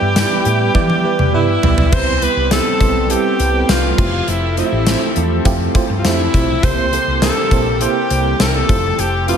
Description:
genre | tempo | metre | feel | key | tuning
1980s-style pop | 102 BPM | 4/4 | straight | unclear | A4 = 442 Hz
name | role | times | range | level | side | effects
bright alto saxophone | melody | 0.0-9.4 s | E4 to C5 | -19 LUFS | left 1 dB | slapback echo
rich symphonic violin section | second line | 0.0-9.4 s | E5 to C6 | -27 LUFS | left 2 dB | slapback echo, tape echo
FM electric piano with tremolo | accompaniment | 0.0-9.4 s | C3 to D5 | -20 LUFS | right 6 dB | slapback echo
lush unison pad | sustained chords | 0.0-9.4 s | C3 to B4 | -25 LUFS | left 1 dB | chorus, phaser
hollow-body short-scale fingered electric bass | bass | 0.0-9.3 s | F1 to E3 | -19 LUFS | equal | none
gated 80s drum kit | drums | 0.2-9.4 s | crash cymbal, hi-hat, kick drum, snare drum, tambourine, toms | -17 LUFS | left 1 dB | none
room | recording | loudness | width
moderate lush hall reverb, RT60 2.1 s | big arena sound | -13 LUFS | side -8 dB against mid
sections
0.0-1.9 A section; 1.9-9.4 B section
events
drum fill 0.8-1.9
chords
0.0 Em; 1.9 Cmaj7; 4.0 Fmaj7; 6.6 C7; 8.7 Fmaj7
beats
0.16 0.75 1.34 | 1.93 2.52 3.10 3.69 | 4.28 4.87 5.46 6.04 | 6.63 7.22 7.81 8.40 | 8.99

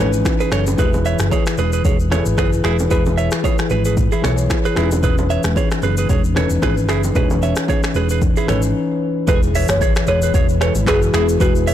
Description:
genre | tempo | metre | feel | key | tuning
afrobeats | 113 BPM | 4/4 | swing 55% on 16ths | unclear | A4 = 443 Hz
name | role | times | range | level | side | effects
bell-like tine electric piano | accompaniment | 0.0-11.7 s | E3 to C#5 | -21 LUFS | left 4 dB | wide subtle chorus
direct-recorded clean electric guitar | riff | 0.0-11.7 s | E4 to E5 | -23 LUFS | right 8 dB | ping-pong delay
hollow-body short-scale fingered electric bass | bass | 0.0-11.7 s | E1 to B1 | -19 LUFS | equal | none
afro-pop drum kit | drums | 0.0-11.7 s | finger snaps, handclaps, hi-hat, kick drum, rim click, shaker | -20 LUFS | equal | soft clipping on snare
bongos and congas | percussion | 0.3-8.6 s | none | -28 LUFS | right 4 dB | none
folk marimba with medium mallets | melody | 9.3-11.7 s | F#4 to C#5 | -20 LUFS | left 2 dB | ping-pong delay
ethereal airy pad | sustained chords | 10.0-11.7 s | G#3 to D#5 | -28 LUFS | right 1 dB | ensemble chorus, built-in reverb
impact | sound effects | 9.3-11.4 s | none | -28 LUFS | equal | none
room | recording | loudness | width
light reverb | blown-out, overdriven recording, overdrive | -14 LUFS | side -11 dB against mid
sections
0.0-9.3 A section; 9.3-11.7 B section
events
break 8.7-9.3; impact 9.3-11.4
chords
0.0 C#m7; 0.8 E; 4.8 C#m7/E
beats
0.25 | 0.78 1.31 1.85 2.38 | 2.91 3.44 3.97 4.50 | 5.03 5.56 6.09 6.62 | 7.16 7.69 8.22 8.75 | 9.28 9.81 10.34 10.87 | 11.40

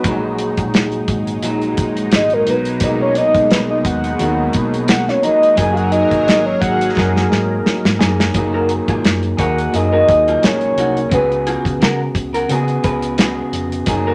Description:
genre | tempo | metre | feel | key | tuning
indie pop, bedroom pop | 87 BPM | 4/4 | swing 55% on 16ths | F# major | A4 = 440 Hz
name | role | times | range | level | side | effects
electric guitar at the edge of break-up | accompaniment | 0.0-14.1 s | A#2 to G#4 | -22 LUFS | equal | warbly pitch drift
warm analog pad | sustained chords | 0.0-8.3 s | B2 to A#4 | -26 LUFS | equal | chorus
hollow-body short-scale fingered electric bass | bass | 0.0-14.1 s | E#1 to C#3 | -26 LUFS | equal | none
damped 70s drum kit | drums | 0.0-14.0 s | hi-hat, kick drum, snare drum | -20 LUFS | equal | none
soft octave-layered synth lead | melody | 2.2-11.8 s | A#4 to G#5 | -18 LUFS | equal | chorus, phaser
electric guitar through a small old amp | second line | 8.5-14.1 s | D#4 to C#5 | -25 LUFS | equal | none
room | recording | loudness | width
wet studio reverb, RT60 0.8 s | none | -16 LUFS | mono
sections
0.0-8.3 A section; 8.3-14.1 B section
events
soft synth lead solo 0.0-8.3; drum fill 7.0-8.3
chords
0.0 F#69; 2.5 Bmaj7; 5.6 F#69; 11.1 C#7sus4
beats
| 0.04 0.74 1.43 2.12 | 2.81 3.51 4.20 4.89 | 5.58 6.28 6.97 7.66 | 8.35 9.04 9.73 10.42 | 11.11 11.80 12.49 13.18 | 13.87

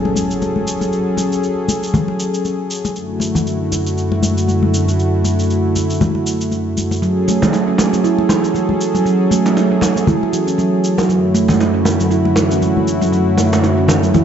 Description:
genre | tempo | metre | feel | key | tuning
afro house | 118 BPM | 4/4 | swing 56% on 16ths | F# minor | A4 = 440 Hz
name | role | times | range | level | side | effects
warm analog pad | sustained chords | 0.0-14.2 s | F#2 to A4 | -17 LUFS | equal | chorus
impact and swell | sound effects | 0.0-0.9, 14.1-14.2 s | none | -32 LUFS | equal | none
congas | percussion | 0.1-14.2 s | none | -20 LUFS | left 2 dB | none
shaker | drums | 0.2-14.2 s | none | -28 LUFS | equal | none
handpan | arpeggios | 7.0-14.2 s | E3 to E4 | -16 LUFS | right 3 dB | tape echo
bongos | percussion | 7.4-14.0 s | none | -21 LUFS | right 2 dB | none
room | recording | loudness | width
moderate lush hall reverb, RT60 2.1 s | nothing above 7.8 kHz | -14 LUFS | side -8 dB against mid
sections
0.0-14.2 A section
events
impact 0.0-0.9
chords
0.0 F#madd9; 3.0 Dadd9/F#; 7.0 F#madd9; 11.1 Dadd9/F#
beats
0.41 | 0.92 1.43 1.94 2.45 | 2.96 3.46 3.97 4.48 | 4.99 5.50 6.01 6.51 | 7.02 7.53 8.04 8.55 | 9.06 9.57 10.07 10.58 | 11.09 11.60 12.11 12.62 | 13.13 13.63 14.14

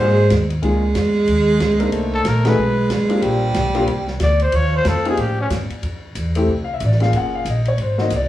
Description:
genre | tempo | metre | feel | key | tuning
jazz, small-group swing and bop | 184 BPM | 4/4 | swing 61% on 8ths | unclear | A4 = 440 Hz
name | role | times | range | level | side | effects
breathy trumpet | melody | 0.0-5.5 s | Db4 to D5 | -20 LUFS | left 1 dB | plate reverb
breathy baritone saxophone | second line | 0.0-5.7 s | F3 to A3 | -19 LUFS | right 2 dB | none
warm grand piano | accompaniment | 0.0-8.3 s | A3 to Gb5 | -21 LUFS | left 3 dB | none
upright bass | bass | 0.0-8.3 s | F#1 to A2 | -20 LUFS | equal | none
open jazz drum kit | drums | 0.3-8.2 s | hi-hat, kick drum, ride cymbal, snare drum | -27 LUFS | equal | none
room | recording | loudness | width
wet club reverb, RT60 0.5 s | heard from further back in the room, studio reverb | -15 LUFS | side -14 dB against mid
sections
0.0-5.8 A section; 5.8-8.3 B section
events
band accent 2.4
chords
0.0 Ab9; 0.6 Db69; 1.9 Cm7; 2.6 B5; 3.2 Bb69; 4.5 Ebadd9; 5.8 Fmaj7; 7.1 Gbmaj13; 7.8 Ab7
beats
0.30 | 0.63 0.95 1.28 1.60 | 1.93 2.25 2.58 2.90 | 3.23 3.55 3.88 4.21 | 4.53 4.86 5.18 5.50 | 5.83 6.16 6.48 6.80 | 7.13 7.45 7.78 8.10

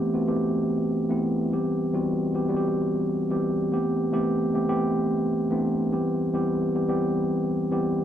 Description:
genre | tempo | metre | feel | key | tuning
disco | 109 BPM | 4/4 | straight | A dorian | A4 = 440 Hz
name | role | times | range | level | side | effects
mellow tine electric piano | solo | 0.0-8.0 s | E3 to G4 | -23 LUFS | equal | none
room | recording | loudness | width
light reverb | none | -23 LUFS | side -10 dB against mid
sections
0.0-8.0 A section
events
none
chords
0.0 Am9; 1.5 Cmaj7; 3.7 Am9; 5.9 Cmaj7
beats
0.41 0.96 | 1.51 2.06 2.61 3.17 | 3.72 4.27 4.82 5.37 | 5.92 6.47 7.02 7.58

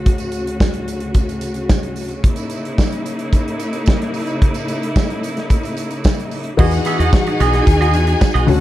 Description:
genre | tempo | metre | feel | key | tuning
disco | 110 BPM | 4/4 | straight | unclear | A4 = 435 Hz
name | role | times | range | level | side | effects
clear studio string section | sustained chords | 0.0-8.6 s | D2 to G#4 | -22 LUFS | equal | none
modern studio drum kit | drums | 0.1-8.6 s | crash cymbal, hi-hat, kick drum, snare drum | -17 LUFS | equal | none
tambourine | percussion | 0.2-8.6 s | none | -38 LUFS | right 14 dB | none
clear studio string section | second line | 6.6-8.6 s | F#4 to G#5 | -22 LUFS | left 3 dB | none
dark baby grand piano | accompaniment | 6.6-8.6 s | D3 to G#4 | -21 LUFS | left 4 dB | none
twangy electric guitar | accompaniment | 6.6-8.5 s | B3 to E5 | -22 LUFS | right 8 dB | none
deep dub fingered electric bass | bass | 6.6-8.6 s | B1 to E2 | -16 LUFS | equal | none
room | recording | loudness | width
light reverb | dark, warm production | -15 LUFS | side -14 dB against mid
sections
0.0-6.6 A section; 6.6-8.6 B section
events
none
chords
0.0 Dmaj7; 2.2 C#m69; 6.6 Emaj9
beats
| 0.06 0.61 1.15 1.70 | 2.24 2.79 3.33 3.87 | 4.42 4.96 5.50 6.05 | 6.59 7.13 7.67 8.21

